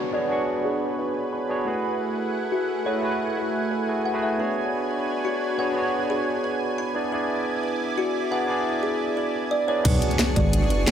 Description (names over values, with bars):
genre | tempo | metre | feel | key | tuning
liquid drum and bass | 176 BPM | 4/4 | straight | B dorian | A4 = 441 Hz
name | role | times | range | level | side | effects
barky tine electric piano | accompaniment | 0.0-10.9 s | A3 to C#6 | -26 LUFS | right 1 dB | dub echo
lush unison pad | sustained chords | 0.0-10.9 s | A3 to C#6 | -28 LUFS | right 1 dB | chorus, sidechain pumping
downlifter and impact | sound effects | 0.0-1.7, 10.0-10.9 s | none | -30 LUFS | equal | none
kalimba | arpeggios | 0.1-10.9 s | F#4 to B5 | -29 LUFS | left 2 dB | low-pass filter, dub echo
swelling detuned saw bass | bass | 9.8-10.9 s | F#1 to B1 | -22 LUFS | equal | none
drum and bass drum kit | drums | 9.8-10.9 s | crash cymbal, hi-hat, snare drum | -24 LUFS | equal | overdrive, low-pass filter on hats, low-pass filter on snare, low-pass filter on toms, low-pass filter on cymbals
electronic kick drum | drums | 9.8-10.4 s | none | -22 LUFS | equal | overdrive
room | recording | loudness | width
moderate plate reverb, RT60 1.3 s | none | -22 LUFS | side -9 dB against mid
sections
0.0-9.8 A section; 9.8-10.9 B section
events
filter sweep on drum 0.0-9.8; filter sweep on analog synth pad 0.0-9.8; filter sweep on kalimba 0.0-9.8; drop 9.8-10.9; impact 9.8-10.9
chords
0.0 Bm69; 1.7 F#m11; 4.4 Bm69; 7.0 E7; 9.8 Bm69